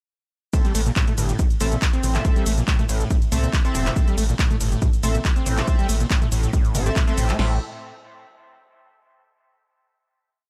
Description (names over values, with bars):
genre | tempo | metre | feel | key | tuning
driving peak-time techno | 140 BPM | 4/4 | straight | A phrygian | A4 = 440 Hz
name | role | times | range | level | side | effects
overdriven acid bass | riff | 0.5-7.6 s | A1 to C4 | -30 LUFS | equal | distortion, lush chorus, sidechain pumping, dub echo
sync-sweep polysynth | stabs | 0.5-7.6 s | C4 to E5 | -33 LUFS | equal | analog chorus, sidechain pumping, dub echo
punchy analog drum machine | drums | 0.5-7.5 s | crash cymbal, kick drum, snare drum | -23 LUFS | equal | none
punchy analog drum machine | drums | 0.5-7.4 s | handclaps, hi-hat, ride cymbal, shaker, toms | -30 LUFS | equal | sidechain pumping on hats, sidechain pumping on cymbals, sidechain pumping on perc, sidechain pumping on toms
gritty driven synth bass | bass | 0.7-7.6 s | E1 to C2 | -25 LUFS | equal | sidechain pumping
room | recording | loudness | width
light reverb | none | -21 LUFS | mono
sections
0.5-7.4 drop; 7.4-9.1 final chord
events
drop 0.5-7.4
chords
0.5 Am